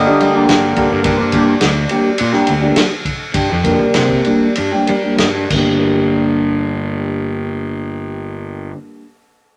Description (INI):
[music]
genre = psychedelic rock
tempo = 91-106 BPM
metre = 4/4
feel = straight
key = G minor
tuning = A4 = 439 Hz
[part]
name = hand-pumped harmonium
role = sustained chords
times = 0.0-8.7 s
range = D3 to G5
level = -22 LUFS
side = equal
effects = low-pass filter
[part]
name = fuzz fingered electric bass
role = bass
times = 0.0-8.7 s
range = G1 to G3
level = -22 LUFS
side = equal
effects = overdrive
[part]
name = electric guitar through a small old amp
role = riff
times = 0.1-9.1 s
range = G3 to G4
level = -19 LUFS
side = equal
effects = phaser, low-pass filter
[part]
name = vintage drum kit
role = drums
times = 0.2-5.7 s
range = crash cymbal, kick drum, ride cymbal, snare drum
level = -21 LUFS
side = equal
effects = none
[sound]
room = moderate studio reverb, RT60 0.8 s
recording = none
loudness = -15 LUFS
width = mono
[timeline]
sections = 0.0-5.8 A section; 5.8-8.5 B section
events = harmonium solo 0.0-5.8; filter sweep 0.0-5.8; slowing down 1.1-5.8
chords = 0.0 Gm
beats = 0.50 | 1.06 1.62 2.19 2.77 | 3.36 3.95 4.57 5.20 | 5.84 6.50 7.16 7.82